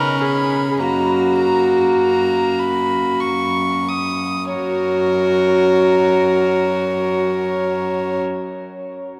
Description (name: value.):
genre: classical, slow romantic movement for string quartet.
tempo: 45-53 BPM.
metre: 3/4.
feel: rubato.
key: F# major.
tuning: A4 = 440 Hz.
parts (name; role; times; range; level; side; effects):
rich violin; melody; 0.0-8.2 s; C#5 to D#6; -24 LUFS; equal; none.
rich violin; second line; 0.0-8.2 s; A#3 to A#4; -28 LUFS; equal; none.
rich viola; accompaniment; 0.0-8.2 s; F#4 to A#4; -21 LUFS; equal; none.
warm cello; bass; 0.0-8.2 s; F#2 to C#3; -27 LUFS; equal; none.
room: wet cathedral reverb, RT60 6.4 s.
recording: in a vast, echoing space.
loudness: -18 LUFS.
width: mono.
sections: 0.0-4.5 A section; 4.5-8.4 B section.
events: slowing down 0.0-4.5.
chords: 0.0 C#5; 0.8 F#.